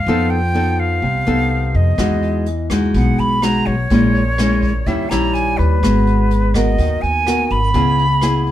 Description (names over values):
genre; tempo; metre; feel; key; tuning
bossa nova; 125 BPM; 4/4; straight; G# minor; A4 = 440 Hz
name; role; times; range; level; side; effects
silver concert flute; melody; 0.0-8.5 s; B4 to B5; -20 LUFS; right 1 dB; none
nylon-string guitar; accompaniment; 0.0-8.5 s; A#2 to A#4; -17 LUFS; left 1 dB; none
upright bass; bass; 0.0-8.5 s; G#1 to F2; -19 LUFS; equal; none
jazz brush drum kit; drums; 2.0-8.5 s; hi-hat, kick drum, rim click; -26 LUFS; equal; none
room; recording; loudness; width
moderate studio reverb, RT60 0.7 s; band playing live in one room; -14 LUFS; side -12 dB against mid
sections
0.0-8.5 A section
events
none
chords
0.1 F7#11; 2.0 Emaj9; 3.9 A#m7b5; 4.9 D#7b9; 5.8 G#m9; 7.7 C#m7